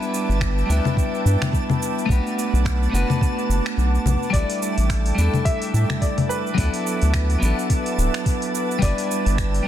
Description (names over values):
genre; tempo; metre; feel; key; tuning
sunset chillout; 107 BPM; 4/4; swing 57% on 16ths; D major; A4 = 439 Hz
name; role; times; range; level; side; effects
clean electric guitar; accompaniment; 0.0-9.7 s; F#3 to B4; -25 LUFS; moving between left 3 dB and right 4 dB; auto-pan, digital delay
airy breathy pad; sustained chords; 0.0-9.7 s; A4 to D6; -30 LUFS; right 1 dB; chorus
smooth R&B drum kit; drums; 0.0-9.6 s; cabasa, congas, finger snaps, hi-hat; -27 LUFS; left 2 dB; soft clipping on snare
twinkling granular texture; texture; 0.0-9.7 s; A5; -34 LUFS; right 2 dB; built-in reverb
round analog bass; bass; 0.3-9.6 s; D1 to A2; -19 LUFS; equal; none
electronic kick drum; drums; 0.4-9.5 s; none; -22 LUFS; equal; none
warm baby grand piano; melody; 4.3-9.7 s; B4 to E5; -30 LUFS; left 2 dB; tape echo
room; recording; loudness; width
light reverb; dense, heavily limited modern master; -18 LUFS; side -11 dB against mid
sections
0.0-9.7 A section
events
kick drops out 3.8-4.3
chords
0.0 G6; 2.1 Bm7; 4.3 A7sus4; 6.6 D69; 8.8 G6